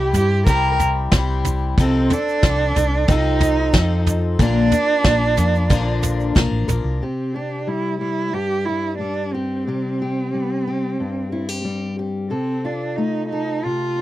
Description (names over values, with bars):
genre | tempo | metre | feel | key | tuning
indie folk with a building arrangement | 91 BPM | 4/4 | straight | unclear | A4 = 440 Hz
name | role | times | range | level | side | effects
rich cello | melody | 0.0-14.0 s | C4 to Bb4 | -22 LUFS | right 3 dB | none
picked twelve-string acoustic guitar | accompaniment | 0.0-7.0 s | Bb2 to Bb4 | -23 LUFS | left 5 dB | none
hollow-body short-scale fingered electric bass | bass | 0.0-7.0 s | A1 to G2 | -20 LUFS | equal | none
soft brush drum kit | drums | 0.1-6.8 s | kick drum, snare drum, toms | -17 LUFS | equal | none
tube shaker | percussion | 0.1-6.8 s | none | -36 LUFS | right 6 dB | none
fingerpicked steel-string acoustic guitar | accompaniment | 7.0-14.0 s | G2 to A4 | -25 LUFS | left 3 dB | none
room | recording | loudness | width
little or no reverb | dry, close 1970s-style studio recording | -17 LUFS | side -15 dB against mid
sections
0.0-7.0 A section; 7.0-14.0 B section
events
none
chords
0.0 C; 1.8 F7/C; 4.4 Bb; 7.0 C5; 12.3 F7/C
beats
0.46 1.12 | 1.77 2.43 3.08 3.74 | 4.39 5.05 5.71 6.37 | 7.02 7.68 8.34 9.00 | 9.66 10.33 10.99 11.65 | 12.31 12.98 13.64